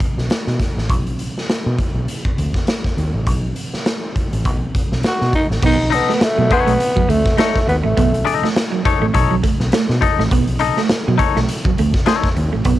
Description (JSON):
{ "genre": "funk", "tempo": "102 BPM", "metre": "4/4", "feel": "swing 56% on 16ths", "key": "B mixolydian", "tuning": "A4 = 439 Hz", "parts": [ { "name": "raw garage drum kit", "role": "drums", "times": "0.0-12.8 s", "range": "crash cymbal, hi-hat, kick drum, snare drum", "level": "-18 LUFS", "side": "equal", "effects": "cassette tape" }, { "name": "overdriven fingered electric bass", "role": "bass", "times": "0.2-12.8 s", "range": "A1 to B2", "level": "-20 LUFS", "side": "equal", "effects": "transformer saturation" }, { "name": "growling tenor saxophone", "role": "melody", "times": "5.1-8.4 s", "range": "A3 to F#4", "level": "-18 LUFS", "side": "equal", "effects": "cassette tape" }, { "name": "clean electric guitar", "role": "riff", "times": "5.6-12.8 s", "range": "F#3 to B3", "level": "-22 LUFS", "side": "right 8 dB", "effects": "cassette tape" }, { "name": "twangy electric guitar", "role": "accompaniment", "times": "5.9-12.3 s", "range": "D#4 to D#5", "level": "-20 LUFS", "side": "left 9 dB", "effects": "cassette tape" } ], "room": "small room ambience", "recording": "home recording on cassette", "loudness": "-15 LUFS", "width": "side -14 dB against mid", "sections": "0.0-5.6 A section; 5.6-12.8 B section", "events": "none", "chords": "0.0 B7(no3); 5.6 B9" }